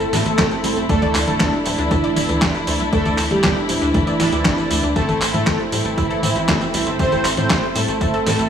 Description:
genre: italo disco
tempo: 118 BPM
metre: 4/4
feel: straight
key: A minor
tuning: A4 = 440 Hz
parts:
  - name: analog synth brass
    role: melody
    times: 0.0-8.5 s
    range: E3 to C5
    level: -22 LUFS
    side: right 1 dB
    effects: chorus, cassette tape, tape echo
  - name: dark symphonic string section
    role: sustained chords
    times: 0.0-8.5 s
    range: A3 to E4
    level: -25 LUFS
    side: left 1 dB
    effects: none
  - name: analog pluck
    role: arpeggios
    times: 0.0-8.5 s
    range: G3 to D5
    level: -27 LUFS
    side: left 2 dB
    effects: chorus, digital delay
  - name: analog synth brass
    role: stabs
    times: 0.0-8.5 s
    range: C4 to E5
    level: -26 LUFS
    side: right 4 dB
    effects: chorus
  - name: dusty soul sampler-style drum kit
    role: drums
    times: 0.0-8.5 s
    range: congas, handclaps, hi-hat, snare drum, tambourine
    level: -21 LUFS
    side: equal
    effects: none
  - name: tight sequencer bass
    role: bass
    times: 0.1-8.5 s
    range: D1 to A2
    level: -25 LUFS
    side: equal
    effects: none
  - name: electronic kick drum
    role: drums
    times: 0.4-8.1 s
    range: none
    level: -24 LUFS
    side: equal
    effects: none
room: light reverb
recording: none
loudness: -16 LUFS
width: side -8 dB against mid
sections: 0.0-8.5 A section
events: none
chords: 0.0 Am; 0.9 Dsus2; 5.0 Am

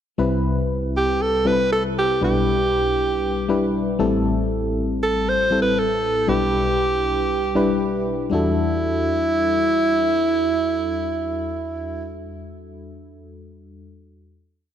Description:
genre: pop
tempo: 118 BPM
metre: 4/4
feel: straight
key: E minor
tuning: A4 = 440 Hz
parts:
  - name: FM electric piano with tremolo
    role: accompaniment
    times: 0.2-14.7 s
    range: A1 to B4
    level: -23 LUFS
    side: left 2 dB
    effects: none
  - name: bright alto saxophone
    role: melody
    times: 1.0-12.1 s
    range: E4 to C5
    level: -20 LUFS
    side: right 2 dB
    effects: digital delay
room: moderate lush hall reverb, RT60 2.7 s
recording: none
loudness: -18 LUFS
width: side -9 dB against mid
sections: 0.2-8.3 verse; 8.3-12.4 final chord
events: none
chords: 0.2 Cmaj7; 2.2 Em7/B; 4.0 Am7; 6.3 Em7/B; 8.3 Em11

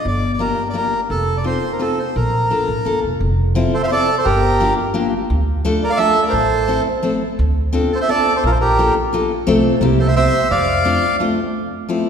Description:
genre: musette waltz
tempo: 172 BPM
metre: 3/4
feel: straight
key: Bb major, F major from 3.2 s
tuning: A4 = 437 Hz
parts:
  - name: bandoneon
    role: melody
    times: 0.0-11.2 s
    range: F4 to F5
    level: -18 LUFS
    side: right 1 dB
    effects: none
  - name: upright bass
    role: bass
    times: 0.1-11.0 s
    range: F1 to F2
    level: -20 LUFS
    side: right 1 dB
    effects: none
  - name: picked steel-string acoustic guitar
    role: accompaniment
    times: 0.4-12.1 s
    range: A3 to A4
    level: -20 LUFS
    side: left 2 dB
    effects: none
room: wet concert hall reverb, RT60 2.3 s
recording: recorded in a church or concert hall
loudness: -15 LUFS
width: side -7 dB against mid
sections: 0.0-3.2 A section; 3.2-11.6 B section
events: none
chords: 0.1 Gm7; 1.1 F7; 2.1 Bbmaj7; 3.2 Fmaj7; 4.2 Gm7; 5.3 Dm; 6.3 Am; 7.4 Dm7; 8.4 Bbmaj7; 9.5 F/C; 9.8 C7; 10.5 F6; 11.6 Fmaj7

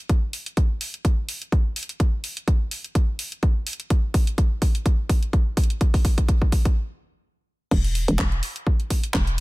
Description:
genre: bass house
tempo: 126 BPM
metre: 4/4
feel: swing 55% on 16ths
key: unclear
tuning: A4 = 439 Hz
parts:
  - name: electronic kick drum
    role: drums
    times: 0.1-9.2 s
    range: none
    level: -20 LUFS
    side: equal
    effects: none
  - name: house drum kit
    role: drums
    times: 0.1-9.4 s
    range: crash cymbal, handclaps, hi-hat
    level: -30 LUFS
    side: equal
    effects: none
  - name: hollow knocking FM bass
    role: bass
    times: 7.7-9.4 s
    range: E1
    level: -22 LUFS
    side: equal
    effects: sidechain pumping
room: little or no reverb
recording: none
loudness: -20 LUFS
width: side -21 dB against mid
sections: 0.0-7.7 A section; 7.7-9.4 B section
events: build-up 0.0-7.7; drum fill 0.1-6.8; stop 6.8-7.7; drop 7.7-9.4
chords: none

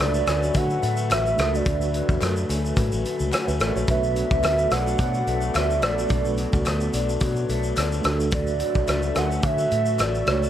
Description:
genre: indie pop, bedroom pop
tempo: 108 BPM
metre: 4/4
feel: swing 55% on 16ths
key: unclear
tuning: A4 = 440 Hz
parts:
  - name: warbly nostalgic lead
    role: melody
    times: 0.0-10.5 s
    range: D5 to F#5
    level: -26 LUFS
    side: right 3 dB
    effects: wide subtle chorus, ping-pong delay
  - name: electric guitar through a small old amp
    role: accompaniment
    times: 0.0-10.5 s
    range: B2 to D4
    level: -29 LUFS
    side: left 5 dB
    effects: wide subtle chorus, warbly pitch drift
  - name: mellow tine electric piano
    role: accompaniment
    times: 0.0-10.5 s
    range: A3 to F#5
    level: -31 LUFS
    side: right 4 dB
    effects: medium tremolo
  - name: warm analog pad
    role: sustained chords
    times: 0.0-10.5 s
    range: D3 to E5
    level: -32 LUFS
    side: left 1 dB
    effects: chorus
  - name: vintage muted fingered electric bass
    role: bass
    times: 0.0-10.5 s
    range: A1 to D3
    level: -26 LUFS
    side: equal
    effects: none
  - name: loose indie drum kit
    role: drums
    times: 0.0-10.5 s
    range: hi-hat, kick drum, rim click, shaker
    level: -26 LUFS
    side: equal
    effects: none
  - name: group handclap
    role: percussion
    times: 0.0-10.1 s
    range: none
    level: -41 LUFS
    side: left 8 dB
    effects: none
room: light reverb, studio reverb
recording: none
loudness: -20 LUFS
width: side -11 dB against mid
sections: 0.0-10.5 A section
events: none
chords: 0.0 Dmaj7; 3.9 Bm7; 8.0 Dmaj7

